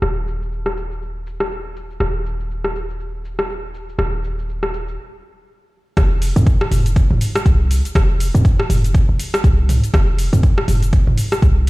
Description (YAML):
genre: afro house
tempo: 121 BPM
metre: 4/4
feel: swing 58% on 16ths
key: unclear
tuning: A4 = 440 Hz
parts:
  - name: warm 808-style bass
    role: bass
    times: 0.0-11.7 s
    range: Eb1 to F2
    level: -19 LUFS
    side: equal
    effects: sidechain pumping
  - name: deep house drum kit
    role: drums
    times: 0.0-11.7 s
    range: cabasa, hi-hat, rim click, toms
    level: -22 LUFS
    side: equal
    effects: overdrive, low-pass filter on perc, low-pass filter on snare, low-pass filter on hats, low-pass filter on toms
  - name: electronic kick drum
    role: drums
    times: 6.0-11.5 s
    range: none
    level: -14 LUFS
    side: equal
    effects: overdrive
room: digital ambience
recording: played on a big sound system in a bare room, stone room reverb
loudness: -15 LUFS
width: side -21 dB against mid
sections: 0.0-6.0 A section; 6.0-11.7 B section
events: stop 5.0-6.0; drop 6.0-11.7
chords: none